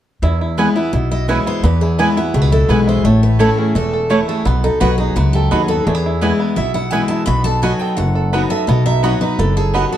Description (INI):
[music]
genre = bluegrass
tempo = 170 BPM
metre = 4/4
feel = straight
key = E major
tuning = A4 = 441 Hz
[part]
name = bluegrass banjo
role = melody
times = 0.2-10.0 s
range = A3 to A4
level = -23 LUFS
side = right 4 dB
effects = none
[part]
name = picked steel-string acoustic guitar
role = accompaniment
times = 0.2-10.0 s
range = E2 to F#4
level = -18 LUFS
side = left 2 dB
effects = none
[part]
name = upright bass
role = bass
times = 0.2-9.8 s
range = E1 to E2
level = -17 LUFS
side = equal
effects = none
[part]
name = mandolin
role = stabs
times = 0.6-9.8 s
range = A3 to B5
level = -21 LUFS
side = right 4 dB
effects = none
[part]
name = picked steel-string acoustic guitar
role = melody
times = 1.1-10.0 s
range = E4 to B5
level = -21 LUFS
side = left 1 dB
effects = none
[sound]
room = light reverb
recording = dark, warm production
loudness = -13 LUFS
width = side -11 dB against mid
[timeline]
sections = 0.2-10.0 A section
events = none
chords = 0.2 E; 3.0 A; 4.5 B; 5.9 E; 7.3 B